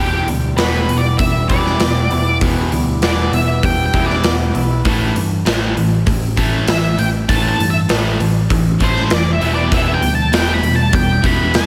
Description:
quiet-loud alternative rock; 98 BPM; 4/4; straight; A4 = 438 Hz
octave-fuzz lead guitar; melody; 0.0-11.7 s; G4 to B5; -23 LUFS; equal; distortion, slapback echo
electric guitar through a small old amp; arpeggios; 0.0-4.8 s; E2 to E4; -26 LUFS; equal; lush chorus, slapback echo, digital delay
distorted electric guitar; riff; 0.0-11.7 s; E2 to A3; -23 LUFS; equal; distortion, slapback echo
overdriven picked electric bass; bass; 0.0-11.7 s; E1 to G2; -22 LUFS; equal
big rock drum kit; drums; 0.3-11.7 s; hi-hat, kick drum, snare drum; -21 LUFS; equal
distorted electric guitar; riff; 4.8-11.7 s; A2 to B3; -24 LUFS; equal; distortion
light reverb, studio ambience; -15 LUFS; mono
0.0-11.7 A section
lead electric guitar solo 0.0-11.7
0.0 Em; 4.8 A5; 9.4 Em

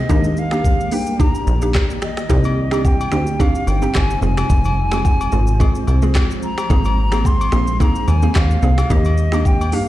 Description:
afrobeats; 109 BPM; 4/4; swing 55% on 16ths; A4 = 444 Hz
hollow concert flute; melody; 0.0-9.9 s; Eb5 to C6; -24 LUFS; left 1 dB; ping-pong delay
hollow square pluck; accompaniment; 0.0-9.9 s; Ab3 to Ab4; -23 LUFS; right 1 dB; chorus
granular cloud pad; sustained chords; 0.0-9.9 s; C3 to D5; -28 LUFS; equal; built-in reverb, tremolo
plucky analog bass; bass; 0.0-9.9 s; F1 to G2; -17 LUFS; equal
afro-pop drum kit; drums; 0.1-9.9 s; finger snaps, handclaps, hi-hat, kick drum, rim click, shaker; -18 LUFS; equal; vintage 12-bit sampler grit
agogo bells and woodblock; percussion; 2.5-9.7 s; -30 LUFS; left 5 dB
digital ambience; played on a big sound system in a bare room, stone room reverb; -14 LUFS; side -15 dB against mid
0.0-9.9 A section
0.1 Ebmaj7; 2.3 Cmadd9; 4.2 Fm; 6.7 Abadd9; 8.9 Ebmaj7

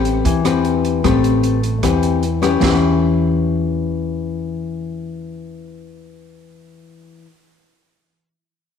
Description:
bossa nova; 152 BPM; 4/4; straight; E minor; A4 = 440 Hz
nylon-string guitar; accompaniment; 0.0-7.3 s; E3 to B4; -17 LUFS; left 6 dB
upright bass; bass; 0.0-7.2 s; A1 to E2; -22 LUFS; right 2 dB
open jazz drum kit; drums; 0.1-2.7 s; hi-hat, kick drum, rim click, snare drum; -23 LUFS; right 6 dB
moderate echo chamber reverb, RT60 1.8 s, small room ambience; 1960s-style stereo with parts hard left and right; -15 LUFS; side -7 dB against mid
0.0-2.6 A section; 2.6-5.8 B section
0.0 Am9; 2.6 Em6

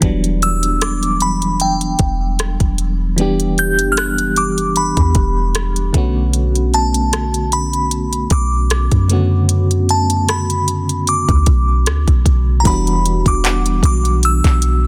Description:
contemporary R&B; 76 BPM; 4/4; swing 54% on 16ths; E minor; A4 = 439 Hz
FM electric piano with tremolo; accompaniment; 0.0-14.9 s; C#3 to G4; -23 LUFS; equal
soft 808-style bass; bass; 0.0-14.9 s; E1 to F#2; -19 LUFS; equal
smooth R&B drum kit; drums; 0.0-14.8 s; handclaps, hi-hat, kick drum, rim click; -20 LUFS; equal
glassy synth bell; melody; 0.4-14.9 s; G5 to G6; -22 LUFS; equal; chorus, tape echo
glassy wavetable pluck; texture; 13.4-14.9 s; F#5; -36 LUFS; equal; chorus, tape echo
little or no reverb; dense, heavily limited modern master; -16 LUFS; mono
0.0-12.7 A section; 12.7-14.9 B section
0.0 Em9; 5.9 Bm9; 12.7 Em9

